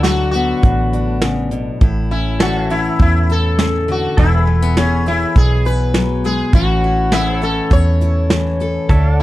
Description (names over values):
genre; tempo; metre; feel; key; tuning
honky-tonk and classic country; 102 BPM; 4/4; straight; A major; A4 = 440 Hz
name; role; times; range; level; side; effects
sitar; melody; 0.0-9.2 s; C#4 to C#5; -20 LUFS; left 2 dB; none
picked steel-string acoustic guitar; accompaniment; 0.0-9.2 s; A2 to A4; -20 LUFS; left 2 dB; none
pedal steel guitar; sustained chords; 0.0-9.2 s; G#4 to F#5; -29 LUFS; right 2 dB; none
vintage muted fingered electric bass; bass; 0.0-9.2 s; E1 to E2; -17 LUFS; equal; none
soft brush drum kit; drums; 0.0-9.0 s; hi-hat, kick drum, snare drum; -14 LUFS; right 1 dB; none
room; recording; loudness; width
little or no reverb; dark, warm production; -13 LUFS; side -16 dB against mid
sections
0.0-9.2 A section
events
none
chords
0.0 D6; 1.8 A; 4.2 E; 6.5 A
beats
0.05 0.64 1.23 | 1.82 2.41 3.00 3.59 | 4.18 4.77 5.36 5.95 | 6.54 7.13 7.72 8.31 | 8.90